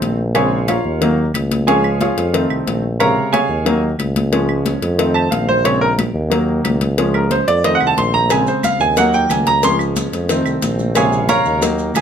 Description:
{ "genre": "latin, salsa", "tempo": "181 BPM", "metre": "4/4", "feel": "straight", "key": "Bb minor", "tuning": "A4 = 441 Hz", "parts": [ { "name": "clear grand piano", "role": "accompaniment", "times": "0.0-12.0 s", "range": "C3 to C6", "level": "-16 LUFS", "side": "right 1 dB", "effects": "none" }, { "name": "warm tuba", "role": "bass", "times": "0.0-12.0 s", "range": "Bb1 to F2", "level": "-20 LUFS", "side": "equal", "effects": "none" }, { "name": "congas", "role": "percussion", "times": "0.0-12.0 s", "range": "none", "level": "-24 LUFS", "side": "left 2 dB", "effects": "none" }, { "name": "cowbell", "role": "percussion", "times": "0.0-12.0 s", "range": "none", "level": "-23 LUFS", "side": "left 6 dB", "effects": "none" }, { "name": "claves", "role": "percussion", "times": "0.3-12.0 s", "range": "none", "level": "-28 LUFS", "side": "right 7 dB", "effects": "none" }, { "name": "maracas", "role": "percussion", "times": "8.3-12.0 s", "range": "none", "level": "-30 LUFS", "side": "right 6 dB", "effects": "none" } ], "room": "light reverb", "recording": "close, detailed microphones", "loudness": "-14 LUFS", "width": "side -8 dB against mid", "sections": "0.0-12.0 A section", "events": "grand piano solo 0.0-12.0", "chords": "0.4 Bbm7; 1.0 Ebm; 1.7 Db; 2.3 F7; 3.0 Bbm7; 3.7 Ebm; 4.3 Db; 5.0 F7; 5.7 Bbm7; 6.3 Ebm; 7.0 Db; 7.6 F7; 8.3 Bbm7; 9.0 Ebm; 9.6 Db; 10.3 F7; 11.0 Bbm7", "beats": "0.02 | 0.35 0.68 1.01 1.34 | 1.68 2.01 2.34 2.67 | 3.00 3.33 3.66 4.00 | 4.33 4.66 4.99 5.32 | 5.65 5.98 6.32 6.65 | 6.98 7.31 7.64 7.97 | 8.30 8.64 8.97 9.30 | 9.63 9.96 10.29 10.63 | 10.96 11.29 11.62 11.96" }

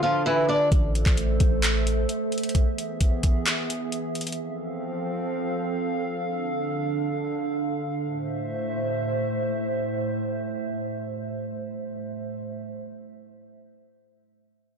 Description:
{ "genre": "hip hop, trap", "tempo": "131 BPM", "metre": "4/4", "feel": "half-time", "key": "A harmonic minor", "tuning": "A4 = 440 Hz", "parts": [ { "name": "picked swing-style acoustic guitar", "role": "melody", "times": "0.0-0.7 s", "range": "E3 to D5", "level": "-23 LUFS", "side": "equal", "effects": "low-pass filter, tape echo" }, { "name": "warbly tape-like pad", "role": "sustained chords", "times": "0.0-12.5 s", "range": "A2 to F5", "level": "-27 LUFS", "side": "right 2 dB", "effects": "chorus, built-in reverb" }, { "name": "hard-hitting 808-style bass", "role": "bass", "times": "0.7-2.1 s", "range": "A1", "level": "-24 LUFS", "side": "equal", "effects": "none" }, { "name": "trap drum kit", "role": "drums", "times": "0.7-4.4 s", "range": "handclaps, hi-hat, kick drum", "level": "-23 LUFS", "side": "equal", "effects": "none" } ], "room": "light reverb", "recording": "blown-out, overdriven recording, overdrive", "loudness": "-24 LUFS", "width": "side -6 dB against mid", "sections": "0.7-8.0 A section; 8.0-11.7 B section", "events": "break 0.0-0.7", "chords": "0.0 Dm; 0.7 Am; 2.5 E; 4.4 F; 6.2 Dm; 8.0 Am", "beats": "0.26 | 0.72 1.18 1.63 2.09 | 2.55 3.01 3.46 3.92 | 4.38 4.84 5.30 5.75 | 6.21 6.67 7.13 7.59 | 8.04 8.50 8.96 9.42 | 9.88 10.34 10.79 11.25" }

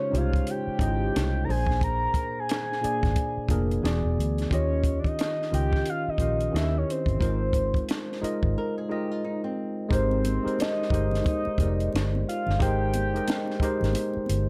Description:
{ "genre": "R&B, neo-soul", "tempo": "89 BPM", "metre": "4/4", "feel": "swing 60% on 16ths", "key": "Ab major", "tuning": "A4 = 440 Hz", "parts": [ { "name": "soft octave-layered synth lead", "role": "melody", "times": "0.0-13.9 s", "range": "C5 to Bb5", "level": "-32 LUFS", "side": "equal", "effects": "chorus, phaser" }, { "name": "tine electric piano", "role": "accompaniment", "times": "0.0-14.5 s", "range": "Bb2 to F5", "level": "-32 LUFS", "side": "equal", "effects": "none" }, { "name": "vintage muted fingered electric bass", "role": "bass", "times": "0.1-14.5 s", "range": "E1 to Eb2", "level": "-29 LUFS", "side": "equal", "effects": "none" }, { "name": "compact cocktail drum kit", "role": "drums", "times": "0.1-14.5 s", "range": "hi-hat, kick drum, snare drum", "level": "-31 LUFS", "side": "equal", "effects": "none" }, { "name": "flamenco guitar", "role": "second line", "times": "8.6-9.9 s", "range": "C4 to Bb4", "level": "-38 LUFS", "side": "equal", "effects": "plate reverb" }, { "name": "congas", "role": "percussion", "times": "9.9-14.5 s", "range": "none", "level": "-42 LUFS", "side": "equal", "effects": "none" } ], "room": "light reverb", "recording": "none", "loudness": "-26 LUFS", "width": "mono", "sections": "0.0-9.9 A section; 9.9-14.5 B section", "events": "break 8.6-9.9", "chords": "0.0 Dbmaj9#11; 1.5 Bb9; 3.8 E9; 4.5 Eb9; 6.5 Eb7b9; 7.2 Ab6; 9.9 Abmaj7", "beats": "0.46 1.14 | 1.81 2.49 3.16 3.83 | 4.51 5.18 5.86 6.53 | 7.21 7.88 8.55 9.23 | 9.90 10.58 11.25 11.92 | 12.60 13.27 13.95" }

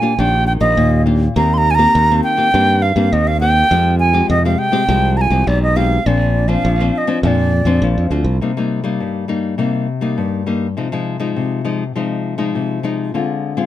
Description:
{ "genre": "samba", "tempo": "102 BPM", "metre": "4/4", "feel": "straight", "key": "C minor from 8.4 s", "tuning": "A4 = 435 Hz", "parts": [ { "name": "wooden flute", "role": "melody", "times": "0.0-8.1 s", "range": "D5 to C6", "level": "-16 LUFS", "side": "right 2 dB", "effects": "none" }, { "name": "nylon-string guitar", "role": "accompaniment", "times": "0.0-13.7 s", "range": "G2 to G4", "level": "-18 LUFS", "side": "left 4 dB", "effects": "none" }, { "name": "modern bright fingered electric bass", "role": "bass", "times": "0.2-8.4 s", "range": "Bb1 to G2", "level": "-15 LUFS", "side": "right 1 dB", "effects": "none" } ], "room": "light reverb", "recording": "close, detailed microphones", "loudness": "-13 LUFS", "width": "side -13 dB against mid", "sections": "0.0-8.4 A section; 8.4-13.7 B section", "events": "none", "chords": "0.0 Ebmaj7; 1.4 Cm7/Eb; 3.7 Fmadd9; 6.1 Bbadd9; 8.4 Cm7; 10.8 Fm7/C; 13.1 Dm7b5", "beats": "0.19 0.77 | 1.36 1.95 2.53 3.12 | 3.71 4.29 4.88 5.47 | 6.06 6.64 7.23 7.82 | 8.41 9.00 9.59 10.18 | 10.78 11.37 11.96 12.55 | 13.14" }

